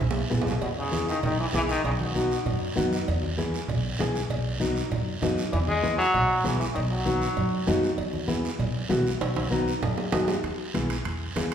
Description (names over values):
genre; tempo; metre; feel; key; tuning
latin, cumbia; 196 BPM; 4/4; straight; E major; A4 = 441 Hz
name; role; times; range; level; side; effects
upright bass; bass; 0.0-11.5 s; B1 to F#2; -30 LUFS; equal; none
congas; percussion; 0.0-11.5 s; none; -33 LUFS; right 2 dB; none
guiro; percussion; 0.0-11.5 s; none; -38 LUFS; right 4 dB; none
timbales and cowbell; percussion; 0.1-11.5 s; none; -34 LUFS; right 4 dB; none
nylon-string guitar; accompaniment; 0.3-11.5 s; B3 to F#5; -29 LUFS; left 2 dB; none
bright trombone; second line; 0.6-2.9, 5.5-7.8 s; B2 to G#3; -27 LUFS; left 1 dB; none
room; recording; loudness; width
wet recital hall reverb, RT60 1.4 s; recorded in a church or concert hall; -24 LUFS; side -8 dB against mid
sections
0.6-10.4 A section; 10.4-11.5 B section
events
drum fill 0.0-0.6, 9.2-10.4; trombone solo 0.6-10.4; nylon-string guitar fill 2.6-3.1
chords
0.0 E; 1.9 B; 3.1 E; 4.3 B; 5.5 E; 6.8 B; 8.0 E; 9.2 B; 10.4 E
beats
0.01 0.31 | 0.62 0.93 1.24 1.54 | 1.85 2.16 2.46 2.77 | 3.08 3.38 3.69 4.00 | 4.30 4.61 4.92 5.22 | 5.53 5.84 6.14 6.45 | 6.76 7.06 7.37 7.68 | 7.98 8.29 8.60 8.90 | 9.21 9.52 9.83 10.13 | 10.44 10.75 11.06 11.36